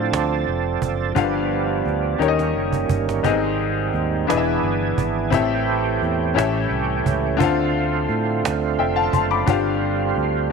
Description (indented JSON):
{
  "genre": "slow gospel",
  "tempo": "58 BPM (dotted quarters)",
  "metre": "6/8",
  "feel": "straight",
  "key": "unclear",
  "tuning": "A4 = 439 Hz",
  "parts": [
    { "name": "bright baby grand piano", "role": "accompaniment", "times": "0.0-10.5 s", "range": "G2 to D6", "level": "-22 LUFS", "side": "left 11 dB", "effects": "none" },
    { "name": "overdriven tonewheel organ", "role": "sustained chords", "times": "0.0-10.5 s", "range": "D3 to A4", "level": "-23 LUFS", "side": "right 11 dB", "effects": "slow rotary speaker, chorus vibrato" },
    { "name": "fingered electric bass", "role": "bass", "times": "0.0-10.5 s", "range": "E1 to A2", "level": "-26 LUFS", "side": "right 1 dB", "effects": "none" },
    { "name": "cajon", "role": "drums", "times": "0.1-10.3 s", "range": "none", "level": "-24 LUFS", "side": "right 5 dB", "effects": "none" }
  ],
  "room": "moderate echo chamber reverb, RT60 2.3 s",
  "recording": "1960s-style stereo with parts hard left and right",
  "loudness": "-18 LUFS",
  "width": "side -5 dB against mid",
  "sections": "0.0-10.5 A section",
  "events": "drum fill 2.2-3.2",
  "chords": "0.0 Dm7; 1.2 G7; 2.2 Eb7; 3.2 Abmaj7; 4.3 E7; 5.3 Am7; 6.4 A7; 7.4 Dm7; 9.5 G7sus4"
}